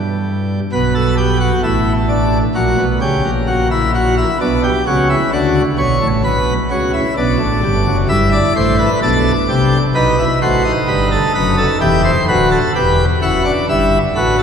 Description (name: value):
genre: classical, baroque-style 3-part fugue for pipe organ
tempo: 65 BPM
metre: 4/4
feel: straight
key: E minor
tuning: A4 = 440 Hz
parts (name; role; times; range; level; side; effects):
- pipe organ, plenum; solo; 0.0-14.4 s; D1 to F#5; -12 LUFS; equal; none
room: wet cathedral reverb, RT60 4.8 s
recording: recorded in a church or concert hall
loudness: -12 LUFS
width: side -7 dB against mid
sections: 0.0-14.4 A section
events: none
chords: 0.0 N.C.; 0.7 Bm; 2.6 F#7/A#; 4.4 Bm; 8.1 Em/G; 10.0 B7; 11.8 Em; 13.7 Em/G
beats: | 0.72 1.64 2.56 3.48 | 4.40 5.33 6.25 7.17 | 8.09 9.02 9.95 10.88 | 11.81 12.75 13.69